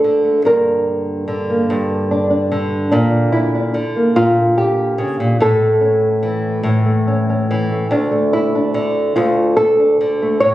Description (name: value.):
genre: folk, solo fingerstyle acoustic guitar.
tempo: 48 BPM (dotted quarters).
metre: 6/8.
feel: straight.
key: unclear.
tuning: A4 = 439 Hz.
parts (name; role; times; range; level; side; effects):
nylon-string guitar; solo; 0.0-10.5 s; D2 to C#5; -14 LUFS; equal; none.
room: light reverb.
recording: recorded on a phone in the room, studio reverb.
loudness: -14 LUFS.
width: side -14 dB against mid.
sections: 0.0-10.5 A section.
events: none.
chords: 0.5 Gm; 2.9 Bb; 5.4 A; 7.9 D5.